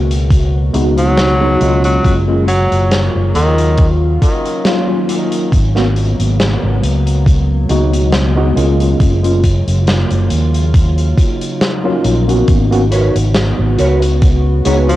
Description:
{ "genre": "vaporwave", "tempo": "69 BPM", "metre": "4/4", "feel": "swing 54% on 16ths", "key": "F# major", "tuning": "A4 = 440 Hz", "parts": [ { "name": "warbly tape-like pad", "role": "sustained chords", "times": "0.0-15.0 s", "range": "B2 to F#4", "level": "-21 LUFS", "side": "equal", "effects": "chorus, built-in reverb, cassette tape" }, { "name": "fingered electric bass", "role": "bass", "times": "0.0-15.0 s", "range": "F#1 to D#2", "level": "-14 LUFS", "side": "equal", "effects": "none" }, { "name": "big rock drum kit", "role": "drums", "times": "0.1-15.0 s", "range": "hi-hat, snare drum", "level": "-21 LUFS", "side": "equal", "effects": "cassette tape" }, { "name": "electronic kick drum", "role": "drums", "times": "0.3-14.4 s", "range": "none", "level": "-12 LUFS", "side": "equal", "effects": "overdrive, cassette tape" }, { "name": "tine electric piano", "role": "accompaniment", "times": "0.7-15.0 s", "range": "F#3 to F#4", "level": "-16 LUFS", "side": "equal", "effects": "fast stereo tremolo, lush chorus, cassette tape, tape echo" }, { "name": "clear tenor saxophone", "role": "melody", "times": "1.0-3.9, 14.9-15.0 s", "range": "D#3 to F#3", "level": "-17 LUFS", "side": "equal", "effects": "tape echo" }, { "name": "mellow electric guitar", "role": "riff", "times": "12.9-14.9 s", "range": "F#4 to C#5", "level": "-17 LUFS", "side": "right 1 dB", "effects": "ensemble chorus, vintage 12-bit sampler grit, cassette tape, tape echo" } ], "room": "light reverb", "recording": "home recording on cassette", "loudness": "-10 LUFS", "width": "side -15 dB against mid", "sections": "0.0-12.5 A section; 12.5-15.0 B section", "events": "kick drops out 11.6-12.5", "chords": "0.3 C#7sus4; 2.0 F#maj7; 3.8 D#m9; 5.5 G#m11; 7.3 C#7sus4; 9.0 F#maj7; 10.7 D#m9; 12.5 G#m11; 14.2 C#7sus4", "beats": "0.31 1.18 | 2.05 2.92 3.79 4.66 | 5.52 6.39 7.26 8.13 | 9.00 9.87 10.74 11.61 | 12.48 13.35 14.22" }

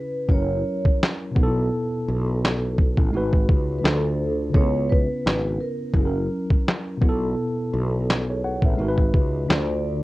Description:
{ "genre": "lo-fi hip hop", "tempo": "85 BPM", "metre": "4/4", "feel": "swing 60% on 16ths", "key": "unclear", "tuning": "A4 = 440 Hz", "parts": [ { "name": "vibraphone with soft mallets", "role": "melody", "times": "0.0-10.0 s", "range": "A4 to D5", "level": "-28 LUFS", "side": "right 2 dB", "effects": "none" }, { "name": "mellow tine electric piano", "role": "accompaniment", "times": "0.0-10.0 s", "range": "B2 to F#5", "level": "-26 LUFS", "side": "equal", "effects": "medium stereo tremolo, cassette tape" }, { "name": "fretless electric bass", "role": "bass", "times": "0.3-10.0 s", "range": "F#1 to D2", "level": "-26 LUFS", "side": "equal", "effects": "none" }, { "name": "lo-fi sampler-style drum kit", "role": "drums", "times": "0.3-9.7 s", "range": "handclaps, kick drum, snare drum", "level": "-20 LUFS", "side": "equal", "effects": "none" } ], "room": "light reverb", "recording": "worn, warbling old tape, cassette tape, warbly pitch drift", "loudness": "-20 LUFS", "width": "side -18 dB against mid", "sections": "0.0-10.0 A section", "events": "break 0.0-10.0", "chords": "0.3 F#7; 1.4 B7sus4; 3.1 G#m7; 3.8 Dm7; 4.5 C#m7; 6.0 F#7; 7.0 B7sus4; 8.8 G#m7; 9.5 Dm7", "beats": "0.31 1.01 | 1.72 2.42 3.13 3.84 | 4.54 5.25 5.95 6.66 | 7.37 8.07 8.78 9.48" }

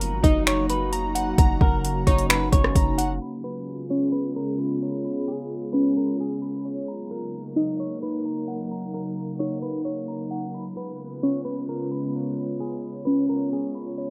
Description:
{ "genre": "hip hop, atmospheric cloud-rap", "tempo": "131 BPM", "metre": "4/4", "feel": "half-time", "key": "F# major", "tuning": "A4 = 440 Hz", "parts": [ { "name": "semi-hollow electric guitar", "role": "melody", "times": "0.0-14.1 s", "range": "G#4 to D#5", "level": "-35 LUFS", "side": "equal", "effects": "low-pass filter, delay" }, { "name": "glassy FM pad", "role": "sustained chords", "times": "0.0-14.1 s", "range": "C#3 to C#5", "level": "-33 LUFS", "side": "equal", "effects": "ensemble chorus, built-in reverb, sidechain pumping" }, { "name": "glassy digital keys", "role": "arpeggios", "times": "0.0-14.1 s", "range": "C#4 to B5", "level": "-29 LUFS", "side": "equal", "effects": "chorus, low-pass filter, delay" }, { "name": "warm 808-style bass", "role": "bass", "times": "0.0-3.2 s", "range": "F#1 to G#1", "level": "-30 LUFS", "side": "equal", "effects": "none" }, { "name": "smooth R&B drum kit", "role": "drums", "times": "0.0-3.1 s", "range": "finger snaps, hi-hat, kick drum, rim click", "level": "-22 LUFS", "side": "equal", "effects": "overdrive" } ], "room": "digital ambience", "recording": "rough home demo mix, low-pass filter", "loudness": "-25 LUFS", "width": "mono", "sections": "0.0-3.2 A section; 3.2-14.1 B section", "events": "filter sweep 3.2-14.1", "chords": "0.0 F#6; 3.2 C#7; 6.9 F#6; 10.5 C#7", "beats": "0.01 0.47 0.92 | 1.38 1.84 2.30 2.76 | 3.21 3.67 4.13 4.59 | 5.05 5.50 5.96 6.42 | 6.88 7.34 7.79 8.25 | 8.71 9.17 9.63 10.09 | 10.54 11.00 11.46 11.92 | 12.38 12.83 13.29 13.75" }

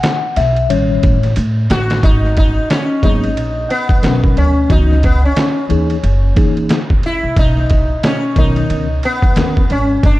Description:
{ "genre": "hip hop, jazz-hop", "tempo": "90 BPM", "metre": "4/4", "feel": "swing 60% on 16ths", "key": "unclear", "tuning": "A4 = 440 Hz", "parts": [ { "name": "mellow tine electric piano", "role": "accompaniment", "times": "0.0-9.6 s", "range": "D#3 to F#5", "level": "-18 LUFS", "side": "left 3 dB", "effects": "medium stereo tremolo" }, { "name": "trip hop sampler-style drum kit", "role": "drums", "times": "0.0-10.2 s", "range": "hi-hat, kick drum, ride cymbal, snare drum", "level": "-15 LUFS", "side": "equal", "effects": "overdrive" }, { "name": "upright bass", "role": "bass", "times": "0.4-10.2 s", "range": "F#1 to A2", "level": "-15 LUFS", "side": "equal", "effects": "none" }, { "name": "sitar", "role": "melody", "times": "1.7-10.2 s", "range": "B3 to F#4", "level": "-18 LUFS", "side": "equal", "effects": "none" } ], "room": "digital ambience", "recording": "dark, warm production", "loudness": "-11 LUFS", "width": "side -17 dB against mid", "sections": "0.0-2.0 A section; 2.0-10.2 B section", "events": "tine electric piano solo 0.0-2.0; drum fill 1.4-2.0", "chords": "0.0 N.C.; 0.7 A7#11; 2.0 G#m9; 4.7 C#m11; 6.0 F#13; 7.4 Bmaj9", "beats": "0.03 0.70 1.37 | 2.03 2.70 3.37 4.03 | 4.70 5.37 6.03 6.70 | 7.37 8.03 8.70 9.37 | 10.03" }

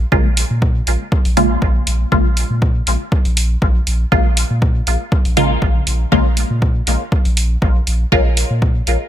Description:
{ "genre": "dub techno", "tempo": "120 BPM", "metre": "4/4", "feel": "straight", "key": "Bb minor", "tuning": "A4 = 440 Hz", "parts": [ { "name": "soft dub sub bass", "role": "bass", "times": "0.0-9.0 s", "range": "Bb1 to Bb2", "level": "-17 LUFS", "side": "equal", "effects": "sidechain pumping" }, { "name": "filtered dub chord stab", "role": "stabs", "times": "0.1-8.3 s", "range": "Db3 to F4", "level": "-18 LUFS", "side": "equal", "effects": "phaser, sidechain pumping, dub echo" }, { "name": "electronic kick drum", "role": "drums", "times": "0.1-8.7 s", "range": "none", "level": "-16 LUFS", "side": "equal", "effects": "overdrive" }, { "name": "electronic hi-hat", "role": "drums", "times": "0.4-9.0 s", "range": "none", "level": "-21 LUFS", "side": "right 1 dB", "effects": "overdrive" } ], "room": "little or no reverb", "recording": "none", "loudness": "-13 LUFS", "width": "side -11 dB against mid", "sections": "0.0-9.1 A section", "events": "none", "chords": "0.0 Bbm7", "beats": "| 0.12 0.62 1.12 1.62 | 2.12 2.62 3.12 3.62 | 4.12 4.62 5.12 5.62 | 6.12 6.62 7.12 7.62 | 8.12 8.62" }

